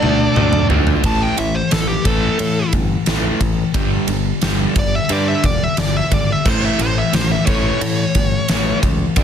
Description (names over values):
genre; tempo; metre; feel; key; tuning
hard rock; 88 BPM; 4/4; straight; A mixolydian; A4 = 440 Hz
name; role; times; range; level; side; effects
dark smooth lead guitar; melody; 0.0-8.8 s; G4 to A5; -21 LUFS; equal; overdrive
octave-fuzz lead guitar; second line; 0.0-0.7 s; A4; -27 LUFS; right 2 dB; distortion
overdriven semi-hollow guitar; riff; 0.0-9.2 s; G2 to D4; -23 LUFS; right 13 dB; harmonic tremolo
sludgy distorted guitar; riff; 0.0-9.2 s; G2 to D4; -22 LUFS; left 13 dB; overdrive
modern bright picked electric bass; bass; 0.0-9.2 s; E1 to A2; -22 LUFS; equal; none
huge arena drum kit; drums; 0.0-9.2 s; crash cymbal, kick drum, ride cymbal, snare drum, toms; -19 LUFS; equal; none
room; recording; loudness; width
light reverb, small room ambience; dense, heavily limited modern master; -14 LUFS; side -8 dB against mid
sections
0.0-1.0 A section; 1.0-9.2 B section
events
drum fill 0.0-1.0; lead electric guitar solo 1.0-9.2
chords
0.0 D5; 1.0 A5; 3.8 G5; 6.5 A